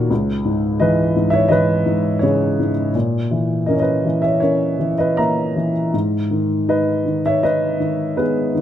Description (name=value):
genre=classical, lyrical solo piano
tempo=78-87 BPM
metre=4/4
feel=rubato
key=G# minor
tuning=A4 = 441 Hz
part: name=dark upright piano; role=solo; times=0.0-8.6 s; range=C#2 to A#5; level=-16 LUFS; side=equal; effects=none
room=light reverb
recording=close, detailed microphones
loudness=-16 LUFS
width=side -10 dB against mid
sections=0.0-8.6 A section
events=none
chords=0.1 C#m7; 2.9 A#dim; 5.9 G#m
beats=| 0.11 0.80 1.51 2.22 | 2.95 3.68 4.42 5.18 | 5.93 6.68 7.43 8.18